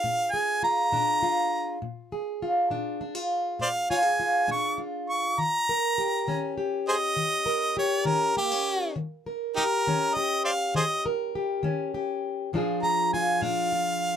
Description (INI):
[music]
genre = acoustic country blues, solo or duo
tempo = 67 BPM (dotted quarters)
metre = 12/8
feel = straight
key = unclear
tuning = A4 = 443 Hz
[part]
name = bright harmonica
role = melody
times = 0.0-14.2 s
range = Eb4 to Db6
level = -25 LUFS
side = right 1 dB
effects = none
[part]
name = fingerpicked plugged-in old ladder-braced acoustic guitar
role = accompaniment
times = 0.0-14.2 s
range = Bb2 to Bb4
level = -28 LUFS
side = left 1 dB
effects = none
[sound]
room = moderate booth ambience, RT60 0.2 s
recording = close, detailed microphones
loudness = -24 LUFS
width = side -8 dB against mid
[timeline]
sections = 0.0-14.2 A section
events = none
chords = 0.0 Bb7; 5.4 Eb7; 12.5 Bb7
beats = 0.01 0.91 | 1.80 2.69 3.59 4.48 | 5.37 6.27 7.16 8.05 | 8.95 9.84 10.73 11.63 | 12.52 13.41